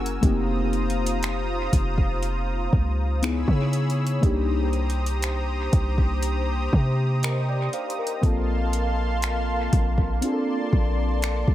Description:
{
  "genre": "contemporary R&B",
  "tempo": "60 BPM",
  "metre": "4/4",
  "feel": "straight",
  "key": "unclear",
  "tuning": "A4 = 440 Hz",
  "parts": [
    { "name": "mellow FM electric piano", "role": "accompaniment", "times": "0.0-11.5 s", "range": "A3 to G5", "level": "-29 LUFS", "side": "left 2 dB", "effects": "chorus, phaser, dub echo" },
    { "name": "lush unison pad", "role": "sustained chords", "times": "0.0-11.5 s", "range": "Bb3 to E6", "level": "-30 LUFS", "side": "equal", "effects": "chorus" },
    { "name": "warm 808-style bass", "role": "bass", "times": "0.0-11.5 s", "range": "F1 to Db3", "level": "-24 LUFS", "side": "equal", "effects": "none" },
    { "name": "smooth R&B drum kit", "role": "drums", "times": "0.1-11.5 s", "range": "finger snaps, hi-hat, kick drum", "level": "-24 LUFS", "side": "equal", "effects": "none" }
  ],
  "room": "digital ambience",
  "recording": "echo-heavy mix",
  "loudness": "-21 LUFS",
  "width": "side -13 dB against mid",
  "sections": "0.0-11.5 A section",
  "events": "none",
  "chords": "0.2 F7sus4; 3.2 Dbm7; 4.2 Cm7; 8.2 Fadd11/Bb; 10.2 Bbmaj9",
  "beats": "| 0.23 1.23 2.23 3.23 | 4.23 5.23 6.23 7.23 | 8.23 9.23 10.23 11.23"
}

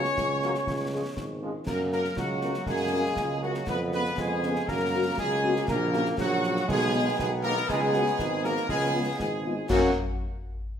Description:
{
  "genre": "military-style march for wind band",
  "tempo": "120 BPM",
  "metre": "2/4",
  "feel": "straight",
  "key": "F# major",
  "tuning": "A4 = 439 Hz",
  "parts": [
    { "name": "clear trumpet section", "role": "melody", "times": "0.0-9.9 s", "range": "F#4 to C#5", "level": "-32 LUFS", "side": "left 2 dB", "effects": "none" },
    { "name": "clear euphonium", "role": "second line", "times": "0.0-9.9 s", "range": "F#3 to C#4", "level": "-32 LUFS", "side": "right 2 dB", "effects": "none" },
    { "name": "hollow small flute group", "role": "second line", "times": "0.0-10.0 s", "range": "F#5 to C#6", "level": "-34 LUFS", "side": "equal", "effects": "none" },
    { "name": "clear tuba", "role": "bass", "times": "0.0-9.9 s", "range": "G#1 to F#2", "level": "-29 LUFS", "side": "right 1 dB", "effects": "none" },
    { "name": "concert snare drum, concert bass drum and clash cymbals", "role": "drums", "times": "0.0-10.0 s", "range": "none", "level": "-36 LUFS", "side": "left 1 dB", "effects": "none" },
    { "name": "dark French horn section", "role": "accompaniment", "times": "0.4-9.9 s", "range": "E#3 to A#4", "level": "-33 LUFS", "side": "left 5 dB", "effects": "none" },
    { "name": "warm trombone section", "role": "sustained chords", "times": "0.4-9.9 s", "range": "C#3 to B3", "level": "-36 LUFS", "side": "right 1 dB", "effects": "none" }
  ],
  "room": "wet large studio reverb, RT60 1.2 s",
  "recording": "none",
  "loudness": "-24 LUFS",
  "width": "side -8 dB against mid",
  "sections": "0.0-9.7 A section; 9.7-10.7 B section",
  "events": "none",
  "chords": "0.0 F#/C#; 0.7 C#; 1.7 F#; 3.7 C#7/E#; 4.7 F#; 5.7 F#/A#; 6.7 G#m/B; 7.7 C#7sus4; 8.7 C#7; 9.7 F#",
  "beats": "0.17 | 0.67 1.17 | 1.67 2.17 | 2.67 3.18 | 3.68 4.18 | 4.68 5.18 | 5.68 6.19 | 6.69 7.19 | 7.69 8.20 | 8.70 9.20 | 9.70"
}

